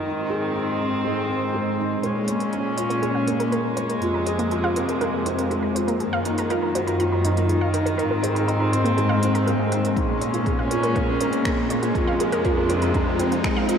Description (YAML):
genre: piano and strings electronica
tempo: 121 BPM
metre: 4/4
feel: straight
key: Bb minor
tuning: A4 = 441 Hz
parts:
  - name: rich chamber string section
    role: sustained chords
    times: 0.0-13.8 s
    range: F2 to Db4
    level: -24 LUFS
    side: equal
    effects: sidechain pumping, shimmer reverb
  - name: felt-muted upright piano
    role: riff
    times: 0.0-13.8 s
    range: Ab3 to Ab4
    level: -24 LUFS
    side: equal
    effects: ensemble chorus, diffuse ambient delay, shimmer reverb
  - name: wide unison pluck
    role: arpeggios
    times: 2.0-13.8 s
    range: Bb3 to Bb5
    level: -28 LUFS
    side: right 1 dB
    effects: wide subtle chorus, sidechain pumping, diffuse ambient delay, shimmer reverb
  - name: deep house drum kit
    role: drums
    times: 2.0-13.8 s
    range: finger snaps, hi-hat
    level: -34 LUFS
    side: right 1 dB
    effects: high-pass filter on hats, high-pass filter on snare, high-pass filter on room
  - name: riser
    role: sound effects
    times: 7.8-13.8 s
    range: none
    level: -35 LUFS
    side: right 1 dB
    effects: none
  - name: electronic kick drum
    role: drums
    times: 10.0-13.5 s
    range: none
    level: -26 LUFS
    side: equal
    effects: none
room: wet cathedral reverb, RT60 6.2 s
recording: dreamy mix soaked in reverb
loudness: -20 LUFS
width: side -7 dB against mid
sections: 0.0-2.0 A section; 2.0-13.8 B section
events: filter sweep on felt piano 0.0-2.0; build-up 2.0-13.8; filter sweep on synth arpeggio sound 2.0-13.8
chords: 0.1 Ab; 2.0 Bbm7; 4.0 Fm; 6.0 Ebmadd9; 8.0 Ab; 10.0 Bbm7; 12.0 Fm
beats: | 0.05 0.55 1.04 1.54 | 2.04 2.53 3.03 3.52 | 4.02 4.51 5.01 5.51 | 6.00 6.50 6.99 7.49 | 7.99 8.48 8.98 9.47 | 9.97 10.46 10.96 11.46 | 11.95 12.45 12.95 13.44